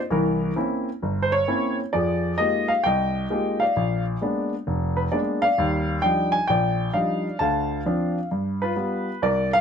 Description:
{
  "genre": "solo jazz",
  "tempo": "132 BPM",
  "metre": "4/4",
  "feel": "swing 67% on 8ths",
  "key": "C minor",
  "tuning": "A4 = 437 Hz",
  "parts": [
    { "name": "warm baby grand piano", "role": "solo", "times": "0.0-9.6 s", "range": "F1 to A5", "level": "-21 LUFS", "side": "equal", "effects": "none" }
  ],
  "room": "little or no reverb",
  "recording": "close, detailed microphones",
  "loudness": "-21 LUFS",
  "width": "side -7 dB against mid",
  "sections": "0.0-9.6 A section",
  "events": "none",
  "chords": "0.1 C7b9; 1.9 Fm11; 3.8 Bb7b9; 5.6 Ebmaj9; 7.4 Dm7; 8.3 G7"
}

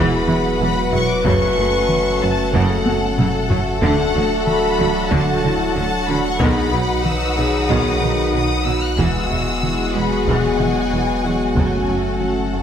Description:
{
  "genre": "cinematic, hybrid orchestral and electronic film score",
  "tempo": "93 BPM",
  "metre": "4/4",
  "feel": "straight",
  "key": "F# minor",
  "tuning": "A4 = 437 Hz",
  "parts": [
    { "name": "warm symphonic violin section", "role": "melody", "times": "0.0-12.6 s", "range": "F#5 to F#6", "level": "-26 LUFS", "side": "left 4 dB", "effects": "none" },
    { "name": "clear symphonic violin section", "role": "second line", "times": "0.0-12.6 s", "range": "G#4 to F#5", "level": "-26 LUFS", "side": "left 3 dB", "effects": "none" },
    { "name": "rich symphonic viola section", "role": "accompaniment", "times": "0.0-12.6 s", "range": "C#3 to F#4", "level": "-26 LUFS", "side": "right 1 dB", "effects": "none" },
    { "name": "mellow trombone section", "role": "sustained chords", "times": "0.0-12.6 s", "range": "D#3 to B3", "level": "-26 LUFS", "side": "right 2 dB", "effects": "none" },
    { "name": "warm French horn section", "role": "sustained chords", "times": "0.0-12.6 s", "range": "E4 to B4", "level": "-24 LUFS", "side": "left 2 dB", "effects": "none" },
    { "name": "warm analog pad", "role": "sustained chords", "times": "0.0-12.6 s", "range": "F#3 to F#5", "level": "-25 LUFS", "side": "equal", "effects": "chorus" },
    { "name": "tight sequenced synth", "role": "arpeggios", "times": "0.0-12.6 s", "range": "D3 to B4", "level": "-30 LUFS", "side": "right 1 dB", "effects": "none" },
    { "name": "clear symphonic double bass section", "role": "bass", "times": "0.0-12.6 s", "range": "E1 to D2", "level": "-25 LUFS", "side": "right 3 dB", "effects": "none" },
    { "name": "rich symphonic cello section", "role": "bass", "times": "0.0-12.6 s", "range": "E2 to D3", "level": "-25 LUFS", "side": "right 2 dB", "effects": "none" },
    { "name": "warm sub bass", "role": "bass", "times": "0.0-12.6 s", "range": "D1 to B1", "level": "-27 LUFS", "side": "equal", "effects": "none" },
    { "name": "taiko ensemble", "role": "drums", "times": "0.3-12.5 s", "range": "none", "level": "-24 LUFS", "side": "equal", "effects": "none" }
  ],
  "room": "wet scoring stage reverb, RT60 1.5 s",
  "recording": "none",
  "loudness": "-16 LUFS",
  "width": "side -8 dB against mid",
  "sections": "0.0-12.6 A section",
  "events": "drum fill 2.9-3.8",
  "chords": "0.0 Eadd9; 1.2 F#m; 3.8 D; 6.4 B; 9.0 Eadd9; 11.6 F#m"
}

